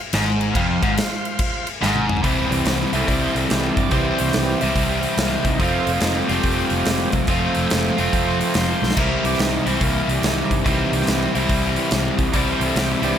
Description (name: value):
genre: blues rock power trio and southern rock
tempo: 143 BPM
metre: 4/4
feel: swing 65% on 8ths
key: C major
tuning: A4 = 440 Hz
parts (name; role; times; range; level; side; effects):
- overdriven tonewheel organ; sustained chords; 0.0-13.2 s; Eb3 to F5; -26 LUFS; right 3 dB; slow rotary speaker
- biting overdriven guitar; riff; 0.1-13.2 s; F2 to F4; -20 LUFS; left 1 dB; none
- vintage muted fingered electric bass; bass; 0.1-13.1 s; F1 to G2; -25 LUFS; equal; none
- big rock drum kit; drums; 0.1-13.1 s; crash cymbal, hi-hat, kick drum, snare drum, toms; -24 LUFS; equal; none
room: light reverb, small room ambience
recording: none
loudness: -17 LUFS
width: side -9 dB against mid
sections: 0.0-2.2 A section; 2.2-13.2 B section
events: drum fill 1.8-2.2, 8.8; tonewheel organ solo 2.2-13.2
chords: 0.0 F5; 2.2 C; 5.6 F; 9.0 C